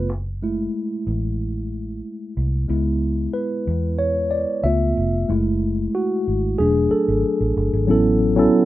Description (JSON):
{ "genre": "lush 1970s-style soul", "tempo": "92 BPM", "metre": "4/4", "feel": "straight", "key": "unclear", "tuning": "A4 = 442 Hz", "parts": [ { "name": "mellow tine electric piano", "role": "accompaniment", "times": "0.0-8.7 s", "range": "F#3 to E5", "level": "-20 LUFS", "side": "equal", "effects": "slow stereo tremolo" }, { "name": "vintage muted fingered electric bass", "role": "bass", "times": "0.0-8.5 s", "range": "E1 to E2", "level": "-22 LUFS", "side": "equal", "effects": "none" } ], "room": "light reverb", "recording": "rough home demo mix", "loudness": "-18 LUFS", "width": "side -15 dB against mid", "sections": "0.0-7.9 A section", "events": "tine electric piano solo 0.0-7.9", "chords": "0.1 F#m9; 2.7 C#m7; 4.6 C#7alt; 5.3 F#m9; 6.6 E7sus4; 7.9 A69" }